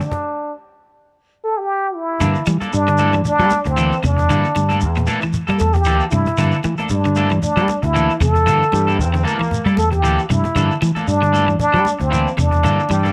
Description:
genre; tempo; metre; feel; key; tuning
afrobeat; 115 BPM; 4/4; swing 55% on 16ths; G dorian; A4 = 441 Hz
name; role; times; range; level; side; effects
trombone with plunger mute; melody; 0.0-13.1 s; C4 to A4; -21 LUFS; equal; none
electric guitar at the edge of break-up; arpeggios; 0.0-13.1 s; Bb2 to G3; -24 LUFS; equal; none
electric guitar at the edge of break-up; stabs; 0.0-13.1 s; E3 to A4; -27 LUFS; equal; lush chorus
cajon; drums; 0.0-13.1 s; none; -31 LUFS; equal; none
shekere; percussion; 0.0-13.1 s; none; -32 LUFS; equal; none
fingered electric bass; bass; 2.2-13.1 s; D2 to G3; -20 LUFS; equal; none
congas; percussion; 2.2-13.0 s; none; -31 LUFS; equal; none
bright trombone section; second line; 8.7-9.6, 12.9-13.1 s; G3 to C4; -28 LUFS; equal; none
room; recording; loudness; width
light reverb, small room ambience; none; -17 LUFS; mono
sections
0.0-2.2 A section; 2.2-13.1 B section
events
stop 0.1-2.2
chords
0.0 N.C.; 2.2 Gm69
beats
| 0.12 0.64 1.16 1.69 | 2.21 2.73 3.25 3.77 | 4.29 4.82 5.34 5.86 | 6.38 6.91 7.43 7.95 | 8.47 8.99 9.51 10.03 | 10.55 11.08 11.60 12.12 | 12.64

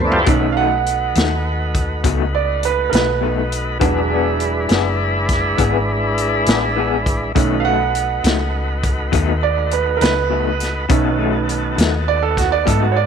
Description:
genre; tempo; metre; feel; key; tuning
slow blues; 68 BPM (dotted quarters); 12/8; straight; B mixolydian; A4 = 439 Hz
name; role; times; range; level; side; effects
bright upright piano; accompaniment; 0.0-13.1 s; D#3 to F#5; -21 LUFS; right 13 dB; none
tonewheel organ; sustained chords; 0.0-13.1 s; G#3 to D5; -22 LUFS; equal; slow rotary speaker
hollow-body short-scale fingered electric bass; bass; 0.0-13.1 s; E1 to G#2; -21 LUFS; equal; none
vintage drum kit; drums; 0.1-12.8 s; hi-hat, kick drum, snare drum, toms; -19 LUFS; equal; none
electric guitar through a small old amp; accompaniment; 0.3-12.8 s; B2 to G#4; -22 LUFS; left 14 dB; tremolo
room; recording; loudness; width
light reverb, small room ambience; 1960s-style stereo with parts hard left and right; -15 LUFS; side -7 dB against mid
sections
0.3-13.1 A section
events
drum fill 0.0; upright piano solo 0.3-13.1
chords
0.3 B7; 3.8 E7; 7.4 B7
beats
| 0.28 1.16 2.05 2.93 | 3.82 4.70 5.59 6.47 | 7.36 8.24 9.13 10.01 | 10.90 11.78 12.67

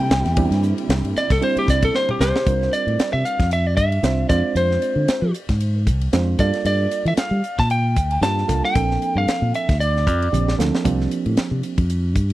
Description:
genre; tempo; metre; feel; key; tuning
electric jazz fusion; 114 BPM; 4/4; swing 56% on 16ths; C mixolydian; A4 = 443 Hz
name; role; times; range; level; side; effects
lightly driven lead guitar; melody; 0.0-10.5 s; G4 to A5; -22 LUFS; equal; tape echo
reed electric piano; accompaniment; 0.0-11.8 s; F3 to C5; -25 LUFS; right 5 dB; none
warm studio string section; sustained chords; 0.0-2.4 s; Bb2 to E4; -32 LUFS; equal; none
fingered electric bass; bass; 0.0-12.3 s; Bb1 to G3; -20 LUFS; equal; none
tight funk drum kit; drums; 0.1-12.3 s; hi-hat, kick drum, ride cymbal, snare drum, toms; -23 LUFS; equal; none
breathy mellow concert flute; second line; 9.8-10.6 s; D6; -29 LUFS; left 6 dB; none
room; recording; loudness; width
small room reverb; dry, close 1970s-style studio recording; -17 LUFS; side -16 dB against mid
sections
0.0-2.5 A section; 2.5-12.3 B section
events
lead electric guitar solo 0.0-2.5; drum fill 1.9-2.5, 10.3-10.8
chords
0.0 C9; 2.5 C9sus4; 4.3 Fm6; 6.4 Gm9; 8.8 Bbmaj9; 10.8 C9sus4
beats
| 0.37 0.90 1.42 1.94 | 2.46 2.99 3.51 4.03 | 4.56 5.08 5.61 6.13 | 6.66 7.18 7.70 8.23 | 8.75 9.28 9.80 10.32 | 10.85 11.37 11.90

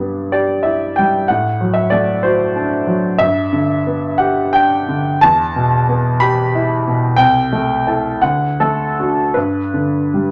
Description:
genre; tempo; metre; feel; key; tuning
classical, romantic character piece for solo piano; 51-65 BPM (dotted quarters); 6/8; rubato; G major; A4 = 436 Hz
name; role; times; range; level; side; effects
clear grand piano; solo; 0.0-10.3 s; C2 to B5; -16 LUFS; equal; none
room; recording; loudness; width
moderate studio reverb, RT60 0.8 s; none; -16 LUFS; mono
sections
0.0-10.3 A section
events
none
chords
0.0 Em/G; 1.3 D7/A; 3.2 G; 5.2 Em; 7.2 Am/C; 8.2 D; 9.4 G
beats
0.34 | 1.29 2.24 | 3.20 4.19 | 5.20 6.19 | 7.18 8.22 | 9.36

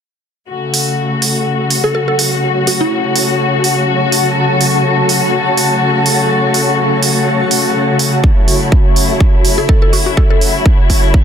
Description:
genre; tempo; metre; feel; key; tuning
bass house; 124 BPM; 4/4; swing 55% on 16ths; F# minor; A4 = 440 Hz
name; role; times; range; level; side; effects
muted studio string section; sustained chords; 0.5-11.2 s; C#3 to F#4; -15 LUFS; left 3 dB; sidechain pumping
granular cloud pad; texture; 1.3-11.2 s; F#4 to A5; -18 LUFS; right 1 dB; built-in reverb, sidechain pumping
electronic hi-hat; drums; 0.7-11.0 s; none; -16 LUFS; right 4 dB; none
mallet-like synth pluck; melody; 1.8-3.2, 9.6-10.4 s; E4 to A4; -18 LUFS; left 1 dB; chorus, phaser, cassette tape, ping-pong delay
electronic kick drum; drums; 8.2-11.2 s; none; -10 LUFS; right 1 dB; none
room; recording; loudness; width
moderate plate reverb, RT60 1.5 s, digital ambience; dense, heavily limited modern master; -10 LUFS; side -8 dB against mid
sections
0.5-11.2 A section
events
none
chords
0.5 F#m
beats
| 0.49 0.98 1.46 1.95 | 2.43 2.92 3.40 3.88 | 4.37 4.85 5.33 5.82 | 6.30 6.79 7.27 7.75 | 8.24 8.72 9.21 9.69 | 10.17 10.66 11.14

